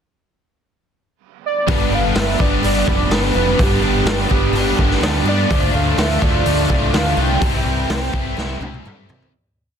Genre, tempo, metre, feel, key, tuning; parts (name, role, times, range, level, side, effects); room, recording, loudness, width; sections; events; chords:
rock, shoegaze and dream pop; 126 BPM; 4/4; straight; G mixolydian; A4 = 440 Hz
warm velvety synth lead; melody; 1.5-9.1 s; G4 to G5; -22 LUFS; right 2 dB; chorus, slapback echo
picked twelve-string acoustic guitar; arpeggios; 1.7-9.3 s; E3 to G4; -31 LUFS; right 1 dB; wide subtle chorus, slapback echo
crunchy overdriven guitar; riff; 1.7-9.3 s; G2 to E4; -22 LUFS; left 13 dB; analog chorus
overdriven electric guitar; riff; 1.7-9.3 s; G2 to G4; -25 LUFS; right 12 dB; reverse reverb
overdriven electric guitar; riff; 1.7-9.3 s; G2 to E4; -25 LUFS; right 2 dB
growling fingered electric bass; bass; 1.7-9.3 s; F1 to C3; -21 LUFS; equal; overdrive
raw garage drum kit; drums; 1.7-9.3 s; hi-hat, kick drum, snare drum, toms; -20 LUFS; equal
small room ambience; dense, heavily limited modern master; -14 LUFS; side -8 dB against mid
0.0-1.7 pickup bar; 1.7-9.3 verse
fade-out 7.4-9.3; drum fill 8.4-9.3
0.0 N.C.; 1.7 G; 5.5 Dm; 7.4 C6